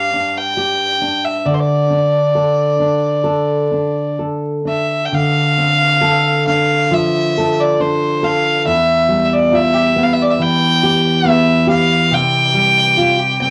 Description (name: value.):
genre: celtic folk, Celtic slow air.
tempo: 68 BPM.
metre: 4/4.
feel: rubato.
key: D dorian.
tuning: A4 = 440 Hz.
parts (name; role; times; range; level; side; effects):
warm fiddle; melody; 0.0-13.5 s; C5 to G5; -17 LUFS; equal; none.
nylon-string guitar; accompaniment; 0.0-13.5 s; E2 to A4; -19 LUFS; equal; none.
room: moderate studio ambience, RT60 0.5 s.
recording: vinyl crackle.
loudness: -15 LUFS.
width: mono.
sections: 0.0-5.1 A section; 5.1-13.5 B section.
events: none.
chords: 0.0 G5; 1.5 D5; 5.1 Dm7; 8.7 Em; 12.1 C.